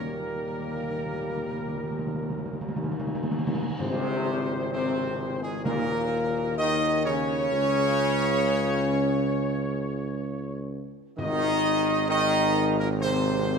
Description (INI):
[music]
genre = classical, ceremonial fanfare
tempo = 65 BPM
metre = 4/4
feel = straight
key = Ab major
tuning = A4 = 440 Hz
[part]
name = mellow trumpet section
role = melody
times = 0.0-13.6 s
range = Ab4 to Eb5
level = -30 LUFS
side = right 2 dB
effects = none
[part]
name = mellow French horn section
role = sustained chords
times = 0.0-13.6 s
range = Ab3 to Eb4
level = -30 LUFS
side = left 5 dB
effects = none
[part]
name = mellow trombone section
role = sustained chords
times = 0.0-13.6 s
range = Ab2 to G3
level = -31 LUFS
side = right 2 dB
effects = none
[part]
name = mellow tuba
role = bass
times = 0.0-13.6 s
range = Ab1 to Eb2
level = -30 LUFS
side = right 2 dB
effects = none
[part]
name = timpani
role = percussion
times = 0.0-12.5 s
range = Ab2 to Eb3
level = -32 LUFS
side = equal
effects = none
[part]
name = tam-tam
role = percussion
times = 3.8-7.5 s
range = none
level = -39 LUFS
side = left 2 dB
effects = none
[sound]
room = wet scoring stage reverb, RT60 1.4 s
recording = minimal, uncompressed stereo recording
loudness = -24 LUFS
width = side -5 dB against mid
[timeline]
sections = 0.0-3.8 A section; 3.8-13.6 B section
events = timpani fill 0.0-3.8; band accent 3.8-4.7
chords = 0.0 Eb; 3.8 Ab; 5.7 Eb5; 7.5 N.C.; 11.2 Ab